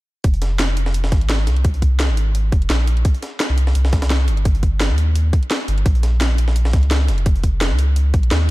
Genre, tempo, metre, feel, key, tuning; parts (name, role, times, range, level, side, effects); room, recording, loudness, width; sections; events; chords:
liquid drum and bass; 171 BPM; 4/4; swing 54% on 16ths; F minor; A4 = 442 Hz
warm sub bass; bass; 0.2-8.5 s; F1 to Eb2; -16 LUFS; equal
breakbeat sampler-style drum kit; drums; 0.2-8.4 s; hi-hat, snare drum; -30 LUFS; equal; high-pass filter on hats, high-pass filter on snare
electronic kick drum; drums; 0.2-8.2 s; -16 LUFS; equal; overdrive
garage drum kit; drums; 0.2-8.4 s; hi-hat, snare drum; -25 LUFS; equal; overdrive
little or no reverb; dark, warm production; -15 LUFS; side -19 dB against mid
0.2-8.5 A section